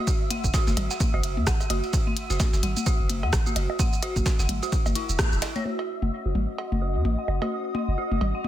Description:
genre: minimal techno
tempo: 129 BPM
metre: 4/4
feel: swing 58% on 16ths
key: unclear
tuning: A4 = 440 Hz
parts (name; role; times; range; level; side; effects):
- flickering grainy texture; texture; 0.0-8.5 s; D#5 to E5; -38 LUFS; equal; built-in reverb, sidechain pumping
- breakbeat sampler-style drum kit; drums; 0.1-5.6 s; ride cymbal, snare drum; -38 LUFS; right 2 dB; sidechain pumping on cymbals, high-pass filter on cymbals, high-pass filter on snare
- electronic kick drum; drums; 0.1-5.3 s; none; -24 LUFS; equal; none
- minimal click drum kit; drums; 0.1-5.5 s; hi-hat, rim click, shaker; -31 LUFS; right 1 dB; soft clipping on snare
- dark detuned synth bell; riff; 0.3-8.4 s; E4 to F#5; -32 LUFS; right 1 dB; chorus, phaser, sidechain pumping, low-pass filter, tape echo
- electronic toms, cowbell, congas and bongos; percussion; 0.3-8.5 s; none; -32 LUFS; left 2 dB; none
- punchy sub bass; bass; 0.4-8.3 s; E1 to F#2; -27 LUFS; equal; sidechain pumping
- warbly tape-like pad; texture; 5.7-8.5 s; C#4 to C#6; -36 LUFS; left 4 dB; chorus, built-in reverb, sidechain pumping
room: digital ambience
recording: dense, heavily limited modern master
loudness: -23 LUFS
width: side -12 dB against mid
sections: 0.0-5.7 A section; 5.7-8.5 B section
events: filter sweep on synth bell 0.0-5.7, 5.7-8.5; band accent 5.2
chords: 0.0 F#5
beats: | 0.07 0.54 1.00 1.47 | 1.93 2.40 2.86 3.33 | 3.79 4.26 4.72 5.19 | 5.65 6.12 6.58 7.05 | 7.51 7.98 8.44

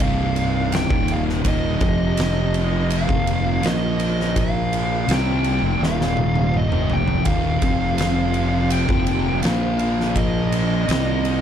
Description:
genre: stoner and doom metal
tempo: 83 BPM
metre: 4/4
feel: straight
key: unclear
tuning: A4 = 440 Hz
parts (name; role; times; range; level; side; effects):
- fuzz lead guitar; melody; 0.0-11.4 s; Eb5 to G5; -26 LUFS; right 1 dB; distortion, tape echo
- mellow tonewheel organ; sustained chords; 0.0-11.4 s; C3 to C5; -33 LUFS; right 1 dB; none
- thick fuzz guitar; riff; 0.0-11.4 s; C2 to C4; -25 LUFS; left 10 dB; distortion
- thick fuzz guitar; riff; 0.0-11.4 s; C2 to C4; -25 LUFS; right 8 dB; distortion
- fuzz fingered electric bass; bass; 0.0-11.4 s; C1 to C2; -24 LUFS; equal; overdrive, tube saturation
- oversized low-tuned drum kit; drums; 0.0-11.4 s; kick drum, ride cymbal, snare drum, toms; -24 LUFS; equal; none
room: small room reverb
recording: dark, warm production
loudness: -18 LUFS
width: side -9 dB against mid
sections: 0.0-11.4 A section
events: drum fill 5.8-7.3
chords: 0.0 Cm; 1.5 Eb5; 1.8 F5; 3.1 Eb5; 3.6 Bb5; 5.1 Eb5; 7.6 F5; 8.9 Eb5; 9.4 Bb5; 10.9 Eb5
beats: 0.00 0.73 | 1.46 2.18 2.91 3.63 | 4.36 5.09 5.81 6.54 | 7.26 7.99 8.71 9.44 | 10.16 10.88

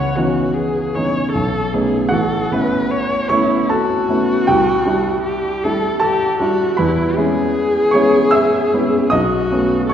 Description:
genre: classical, impressionist duo for viola and grand piano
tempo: 77 BPM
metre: 3/4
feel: rubato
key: unclear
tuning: A4 = 440 Hz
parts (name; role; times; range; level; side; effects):
- dark viola; melody; 0.0-9.9 s; E4 to C#5; -18 LUFS; left 2 dB; none
- warm baby grand piano; accompaniment; 0.0-9.9 s; A1 to E6; -16 LUFS; right 1 dB; none
room: wet concert hall reverb, RT60 2.1 s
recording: heard from further back in the room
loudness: -14 LUFS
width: side -9 dB against mid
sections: 0.0-9.9 A section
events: none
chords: 0.0 C#m11; 1.3 B13; 2.1 A69; 4.5 Cadd9; 6.8 E6; 9.1 B9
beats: 0.56 1.34 | 2.12 2.91 3.70 | 4.48 5.25 6.01 | 6.78 7.54 8.32 | 9.11 9.91

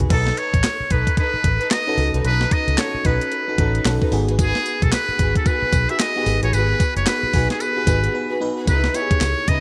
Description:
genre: R&B, new jack swing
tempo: 112 BPM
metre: 4/4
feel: swing 61% on 16ths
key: unclear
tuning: A4 = 439 Hz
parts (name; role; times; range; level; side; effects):
- FM electric piano with soft pad layer; accompaniment; 0.0-9.6 s; B3 to B4; -29 LUFS; equal; chorus
- vintage muted fingered electric bass; bass; 0.0-9.6 s; F#1 to C#3; -24 LUFS; equal; none
- crisp 8-bit digital drum machine; drums; 0.0-9.6 s; crash cymbal, handclaps, hi-hat, kick drum, snare drum, tambourine, toms; -23 LUFS; equal; overdrive, vintage 12-bit sampler grit
- trumpet with metal mute; melody; 0.1-9.6 s; G#4 to E5; -24 LUFS; equal; digital delay
- warm studio string section; stabs; 0.1-9.6 s; D#4 to B4; -32 LUFS; equal; none
- cowbell; percussion; 0.1-9.4 s; none; -40 LUFS; equal; none
room: light reverb, digital ambience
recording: bright 1980s-style digital production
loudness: -19 LUFS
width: mono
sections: 0.1-8.7 A section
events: break 8.1-8.7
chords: 0.1 B7; 4.1 G#m7; 8.7 C#m9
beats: | 0.10 0.64 1.18 1.71 | 2.25 2.78 3.32 3.85 | 4.39 4.92 5.46 6.00 | 6.53 7.07 7.60 8.14 | 8.68 9.21

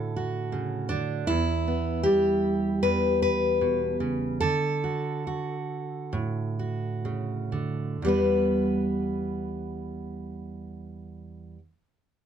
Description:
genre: folk, solo fingerstyle acoustic guitar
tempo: 60-80 BPM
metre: 4/4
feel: straight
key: E dorian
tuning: A4 = 440 Hz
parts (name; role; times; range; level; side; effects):
- fingerpicked steel-string acoustic guitar; solo; 0.0-11.6 s; E2 to B4; -25 LUFS; equal; none
room: light reverb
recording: dark, warm production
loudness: -25 LUFS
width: side -8 dB against mid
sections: 0.0-8.0 A section; 8.0-12.0 B section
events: slowing down 1.3-8.0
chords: 0.0 D; 1.3 Em; 4.4 D; 8.0 Em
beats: 0.51 | 1.27 2.04 2.81 3.60 | 4.41 5.25 6.12 7.05 | 8.02 9.02 10.00 10.97

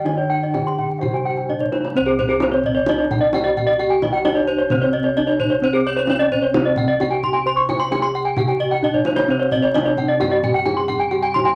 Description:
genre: Balinese gamelan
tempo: 131 BPM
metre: 4/4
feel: straight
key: C pelog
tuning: A4 = 440 Hz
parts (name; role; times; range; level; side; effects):
- gamelan-type bronze metallophone; melody; 0.0-11.6 s; C4 to C5; -25 LUFS; equal; none
- breathy mellow bansuri; second line; 0.0-1.8 s; C5 to Ab5-39c; -29 LUFS; equal; none
- gamelan-type bronze metallophone; accompaniment; 0.0-2.0, 9.3-11.6 s; C3 to G3-45c; -32 LUFS; equal; none
- gamelan-type bronze metallophone; arpeggios; 0.0-11.5 s; C5 to C6; -25 LUFS; equal; none
- gamelan-type bossed gongs; bass; 0.0-11.6 s; C2 to C5; -30 LUFS; equal; none
- kendang; percussion; 0.1-11.5 s; none; -27 LUFS; equal; none
- gamelan-type bronze metallophone; arpeggios; 0.2-11.6 s; Ab4-40c to Db6; -24 LUFS; equal; none
room: moderate studio ambience, RT60 0.5 s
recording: vinyl crackle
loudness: -19 LUFS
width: mono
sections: 0.0-2.0 A section; 2.0-11.6 B section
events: drum fill 1.5-2.0, 8.8-9.3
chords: none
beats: | 0.05 0.54 1.02 1.49 | 1.95 2.41 2.87 3.33 | 3.79 4.24 4.70 5.16 | 5.62 6.08 6.53 6.99 | 7.45 7.91 8.37 8.82 | 9.28 9.74 10.20 10.66 | 11.12

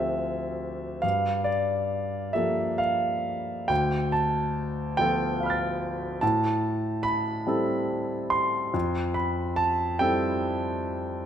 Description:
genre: classical, impressionist solo piano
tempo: 47 BPM (dotted quarters)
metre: 6/8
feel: uneven beats, rubato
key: D dorian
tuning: A4 = 440 Hz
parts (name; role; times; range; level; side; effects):
- warm concert grand piano; solo; 0.0-11.3 s; D2 to A6; -24 LUFS; equal; none
room: wet recital hall reverb, RT60 1.4 s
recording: none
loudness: -24 LUFS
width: side -9 dB against mid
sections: 0.0-11.3 A section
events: none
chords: 0.0 F69/D; 1.0 Gm9; 3.7 Dm6; 6.2 Am9; 8.7 Fmaj9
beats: | 1.03 2.36 | 3.70 4.99 | 6.22 7.47 | 8.74 10.02

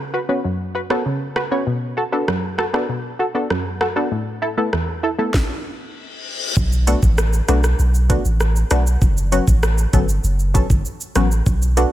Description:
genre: dancehall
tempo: 98 BPM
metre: 4/4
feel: straight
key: B minor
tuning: A4 = 439 Hz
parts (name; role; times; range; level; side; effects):
- punchy chord stab; accompaniment; 0.0-11.9 s; E2 to C#5; -21 LUFS; equal; chorus, sidechain pumping
- island pop drum kit; drums; 0.9-11.9 s; hi-hat, kick drum, rim click, shaker, snare drum; -21 LUFS; equal; none
- reverse cymbal and impact; sound effects; 6.0-9.0 s; none; -28 LUFS; left 3 dB; none
- punchy sub bass; bass; 6.6-11.8 s; F#1 to B1; -17 LUFS; equal; none
room: little or no reverb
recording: none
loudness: -16 LUFS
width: side -14 dB against mid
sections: 0.0-6.6 A section; 6.6-11.9 B section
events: stop 5.3-6.6; reverse cymbal 6.0-6.6; impact 6.6-9.0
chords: 0.0 F#sus4; 1.7 Bm7; 4.1 Asus2; 6.6 Bm7; 9.0 F#sus4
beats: 0.44 1.05 | 1.67 2.28 2.89 3.50 | 4.12 4.73 5.34 5.95 | 6.57 7.18 7.79 8.40 | 9.02 9.63 10.24 10.85 | 11.46

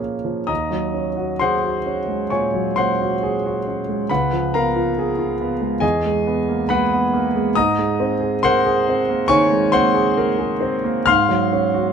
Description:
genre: classical, impressionist solo piano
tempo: 68 BPM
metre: 4/4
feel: uneven beats, rubato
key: Eb dorian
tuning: A4 = 440 Hz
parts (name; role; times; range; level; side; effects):
- clear grand piano; solo; 0.0-11.9 s; Db2 to F6; -17 LUFS; equal; none
room: light reverb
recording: close, detailed microphones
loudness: -17 LUFS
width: side -7 dB against mid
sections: 0.5-11.9 A section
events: none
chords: 0.5 Ebm7; 4.1 Db7; 5.8 Emaj7#11; 7.6 Abadd9; 11.1 Gbmaj7(no3)/Ab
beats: | 0.50 1.40 2.31 3.21 | 4.09 4.97 5.83 6.69 | 7.55 8.42 9.30 10.16 | 11.08

